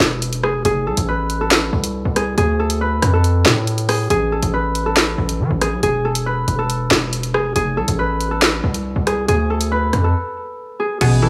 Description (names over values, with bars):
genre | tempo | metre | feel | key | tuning
hip hop, drill | 139 BPM | 4/4 | half-time | unclear | A4 = 441 Hz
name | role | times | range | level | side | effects
Celtic harp | melody | 0.0-11.3 s | G#4 to B4 | -23 LUFS | equal | none
distorted 808-style bass | bass | 0.0-11.3 s | E1 to E3 | -22 LUFS | equal | distortion
drill drum kit | drums | 0.0-11.1 s | crash cymbal, handclaps, hi-hat, rim click, snare drum | -20 LUFS | equal | none
hollow square pluck | accompaniment | 11.0-11.3 s | B2 to E3 | -15 LUFS | equal | chorus
glass harmonica | sustained chords | 11.0-11.3 s | A4 to B5 | -36 LUFS | equal | none
room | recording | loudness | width
light reverb, digital ambience | small room ambience | -18 LUFS | mono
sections
0.0-11.0 A section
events
break 10.1-11.0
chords
0.0 Eadd11; 0.7 F; 2.4 Dm; 4.1 Asus2; 5.8 Eadd11; 7.6 F; 9.3 Dm